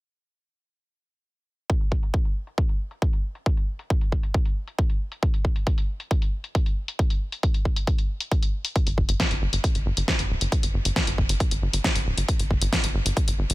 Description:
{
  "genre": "uplifting trance",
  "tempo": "136 BPM",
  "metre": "4/4",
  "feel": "straight",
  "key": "unclear",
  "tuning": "A4 = 440 Hz",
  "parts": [
    { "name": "big-room dance drum kit", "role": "drums", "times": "1.7-13.5 s", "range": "hi-hat, snare drum", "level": "-28 LUFS", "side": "left 1 dB", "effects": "sidechain pumping on hats, low-pass filter on hats, low-pass filter on snare" },
    { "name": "electronic kick drum", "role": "drums", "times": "1.7-13.3 s", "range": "none", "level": "-23 LUFS", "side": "equal", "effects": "none" },
    { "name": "tight sequencer bass", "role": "bass", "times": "8.9-13.5 s", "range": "D1 to G1", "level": "-25 LUFS", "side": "equal", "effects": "sidechain pumping" }
  ],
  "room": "digital ambience",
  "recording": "none",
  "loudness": "-22 LUFS",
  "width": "side -19 dB against mid",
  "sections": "1.7-13.5 A section",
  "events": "none",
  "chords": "none",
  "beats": "| 1.70 2.14 2.58 3.02 | 3.46 3.90 4.34 4.79 | 5.23 5.67 6.11 6.55 | 6.99 7.43 7.87 8.31 | 8.76 9.20 9.64 10.08 | 10.52 10.96 11.40 11.84 | 12.29 12.73 13.17"
}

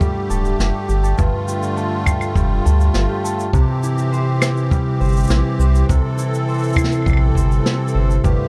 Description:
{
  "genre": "folktronica",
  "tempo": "102 BPM",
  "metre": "4/4",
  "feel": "straight",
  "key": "unclear",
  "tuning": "A4 = 440 Hz",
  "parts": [
    { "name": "musette accordion", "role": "sustained chords", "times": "0.0-8.5 s", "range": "D3 to A4", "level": "-27 LUFS", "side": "equal", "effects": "none" },
    { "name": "concert harp", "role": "arpeggios", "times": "0.0-8.5 s", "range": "G2 to C5", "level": "-22 LUFS", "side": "equal", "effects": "none" },
    { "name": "kick drum", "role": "drums", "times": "0.0-8.4 s", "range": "none", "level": "-22 LUFS", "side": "equal", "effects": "none" },
    { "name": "shaker, snare drum and claves", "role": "drums", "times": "0.0-8.4 s", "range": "none", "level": "-27 LUFS", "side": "equal", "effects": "none" },
    { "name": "warm sub bass", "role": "bass", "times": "0.3-8.4 s", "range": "D1 to D2", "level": "-19 LUFS", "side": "equal", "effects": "none" }
  ],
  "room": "little or no reverb",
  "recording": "none",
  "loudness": "-18 LUFS",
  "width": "mono",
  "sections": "0.0-8.5 A section",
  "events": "none",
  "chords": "0.0 Gsus2; 3.5 C",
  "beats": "0.01 0.59 | 1.18 1.77 2.36 2.95 | 3.54 4.12 4.71 5.30 | 5.89 6.48 7.07 7.65 | 8.24"
}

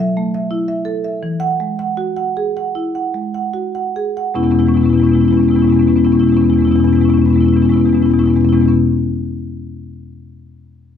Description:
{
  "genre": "classical, contemporary piece for solo marimba",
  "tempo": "71-90 BPM",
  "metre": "4/4",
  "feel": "rubato",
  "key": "E major",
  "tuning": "A4 = 440 Hz",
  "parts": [
    { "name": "marimba with medium hard mallets", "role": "solo", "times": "0.0-8.8 s", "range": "E2 to F#5", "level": "-13 LUFS", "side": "left 2 dB", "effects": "none" }
  ],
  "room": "light reverb",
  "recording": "close, detailed microphones",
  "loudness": "-12 LUFS",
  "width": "side -8 dB against mid",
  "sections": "0.0-4.4 A section; 4.4-7.6 B section",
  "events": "slowing down 0.0-4.4",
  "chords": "0.0 B7sus4 (rootless); 1.2 Eadd9; 4.4 E6",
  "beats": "0.52 | 1.24 1.98 2.74 3.54 | 4.36 5.17 5.99 6.80"
}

